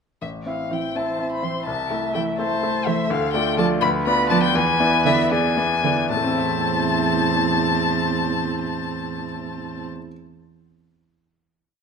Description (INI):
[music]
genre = quick classical-period movement for piano quartet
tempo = 75-84 BPM (dotted quarters)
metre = 6/8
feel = straight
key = A minor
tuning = A4 = 441 Hz
[part]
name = muted violin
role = melody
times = 0.2-9.9 s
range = E5 to C6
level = -23 LUFS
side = left 6 dB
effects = none
[part]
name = bright grand piano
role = accompaniment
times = 0.2-10.1 s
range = A1 to E5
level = -24 LUFS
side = left 2 dB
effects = none
[part]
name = muted cello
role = second line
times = 0.7-9.8 s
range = E2 to F3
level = -26 LUFS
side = right 8 dB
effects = none
[part]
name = muted viola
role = accompaniment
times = 0.9-9.8 s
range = C4 to E5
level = -28 LUFS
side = right 5 dB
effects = none
[sound]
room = moderate recital hall reverb, RT60 1.5 s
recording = close, detailed microphones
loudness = -19 LUFS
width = side -6 dB against mid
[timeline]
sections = 0.2-6.1 A section; 6.1-9.2 final chord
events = slowing down 2.4-6.1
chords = 0.2 Am; 1.7 Am/C; 3.1 Dm; 3.8 Bdim/D; 4.6 E7; 6.1 Am/E